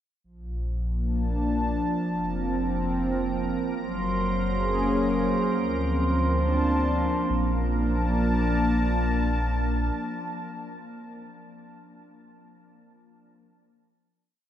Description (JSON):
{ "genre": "ambient", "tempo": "68 BPM", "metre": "4/4", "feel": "straight", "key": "Bb major", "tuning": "A4 = 440 Hz", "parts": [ { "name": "warm analog pad", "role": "sustained chords", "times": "0.2-10.9 s", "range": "F3 to A5", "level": "-27 LUFS", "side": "equal", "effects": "chorus" }, { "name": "warm sub bass", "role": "bass", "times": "0.2-9.9 s", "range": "F1 to D2", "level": "-28 LUFS", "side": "equal", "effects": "none" }, { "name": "organ-like drone", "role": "drone", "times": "2.2-10.4 s", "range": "Bb3 to Bb4", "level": "-34 LUFS", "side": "right 2 dB", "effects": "ensemble chorus, built-in reverb" }, { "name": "glass harmonica", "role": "texture", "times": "3.8-7.3 s", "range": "C5 to C6", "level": "-32 LUFS", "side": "right 2 dB", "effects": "none" } ], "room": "wet huge ambient reverb, RT60 7.7 s", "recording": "none", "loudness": "-23 LUFS", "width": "side -10 dB against mid", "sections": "0.2-7.3 A section; 7.3-10.8 final chord", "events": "fade-in on synth drone 0.2-7.3", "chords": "0.2 Bbmaj7; 2.0 F; 3.8 Gbadd9; 5.5 Dm7; 7.3 Bbmaj7", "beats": "| 0.24 1.12 2.00 2.88 | 3.77 4.65 5.53 6.41 | 7.30 8.18 9.06 9.94" }